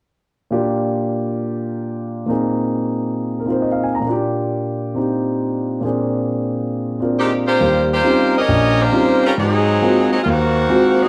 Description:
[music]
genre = jazz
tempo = 136 BPM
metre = 4/4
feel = swing 68% on 8ths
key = Eb mixolydian from 7.6 s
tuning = A4 = 438 Hz
[part]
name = warm concert grand piano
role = accompaniment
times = 0.5-11.0 s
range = Bb1 to Bb5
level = -20 LUFS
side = equal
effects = none
[part]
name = edgy saxophone section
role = melody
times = 7.2-11.1 s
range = Eb3 to Eb5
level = -18 LUFS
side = equal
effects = plate reverb
[sound]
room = moderate large studio reverb, RT60 0.8 s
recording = dark, warm production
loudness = -18 LUFS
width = mono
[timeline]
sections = 0.5-7.6 A section; 7.6-11.1 B section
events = none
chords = 0.5 Bb6; 2.3 Bb7sus4; 4.1 Ebmaj7/Bb; 5.8 Bb7; 7.6 Eb13; 9.4 Ab13

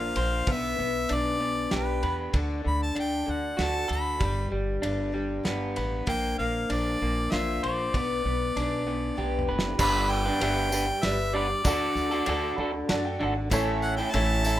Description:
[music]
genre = folk rock and heartland rock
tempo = 97 BPM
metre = 3/4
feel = straight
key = unclear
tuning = A4 = 440 Hz
[part]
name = clear harmonica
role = melody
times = 0.0-14.6 s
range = B4 to B5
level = -30 LUFS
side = equal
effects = plate reverb
[part]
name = picked twelve-string acoustic guitar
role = accompaniment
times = 0.0-14.6 s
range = G2 to C5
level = -37 LUFS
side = left 7 dB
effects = wide subtle chorus
[part]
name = electric guitar through a small old amp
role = riff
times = 0.0-14.6 s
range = A2 to C5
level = -29 LUFS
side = equal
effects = none
[part]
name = upright bass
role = bass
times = 0.0-14.6 s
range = F#1 to F#2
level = -31 LUFS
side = equal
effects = none
[part]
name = cloth-damped thuddy drum kit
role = drums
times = 0.2-14.3 s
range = crash cymbal, kick drum, ride cymbal, snare drum, toms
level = -32 LUFS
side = equal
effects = none
[part]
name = mellow tonewheel organ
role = sustained chords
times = 9.5-14.6 s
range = G3 to C5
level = -41 LUFS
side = equal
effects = none
[part]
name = clear upright piano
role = accompaniment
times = 9.8-14.6 s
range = E4 to B5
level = -34 LUFS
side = right 1 dB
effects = plate reverb
[part]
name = tambourine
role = percussion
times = 9.8-14.6 s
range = none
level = -38 LUFS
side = right 2 dB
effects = none
[sound]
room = light reverb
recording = rough home demo mix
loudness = -25 LUFS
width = side -13 dB against mid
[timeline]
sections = 0.0-9.8 A section; 9.8-14.6 B section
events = drum fill 9.2-9.8; upright piano fill 12.3-13.5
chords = 0.5 G/B; 2.3 D; 4.2 G; 6.1 Bbadd9; 7.9 G/B; 9.8 G; 11.7 D; 13.5 A

